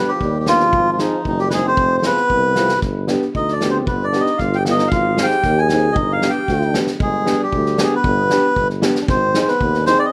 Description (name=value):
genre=klezmer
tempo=115 BPM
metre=2/4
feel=straight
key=G phrygian dominant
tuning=A4 = 438 Hz
part: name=melodica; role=melody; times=0.0-10.1 s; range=Eb4 to Ab5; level=-20 LUFS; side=equal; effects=slapback echo
part: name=clear trombone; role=second line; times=0.0-10.1 s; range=Eb3 to Ab4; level=-27 LUFS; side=equal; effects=slapback echo
part: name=warm upright piano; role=accompaniment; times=0.0-10.0 s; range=B3 to Ab4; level=-24 LUFS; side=equal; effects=none
part: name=mellow tuba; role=bass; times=0.2-9.9 s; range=F1 to Eb2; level=-24 LUFS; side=equal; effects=none
part: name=unplugged drum kit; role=drums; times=0.2-10.0 s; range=kick drum, snare drum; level=-26 LUFS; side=equal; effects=none
room=little or no reverb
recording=none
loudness=-17 LUFS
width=mono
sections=0.0-7.0 A section; 7.0-10.1 B section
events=melodica solo 0.0-7.0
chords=0.0 G; 0.7 Ab; 1.8 Fm; 2.8 G; 4.9 Ab; 6.0 G; 9.1 Ab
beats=0.22 | 0.74 1.26 | 1.79 2.31 | 2.83 3.35 | 3.88 4.40 | 4.92 5.44 | 5.96 6.48 | 7.00 7.53 | 8.05 8.57 | 9.09 9.61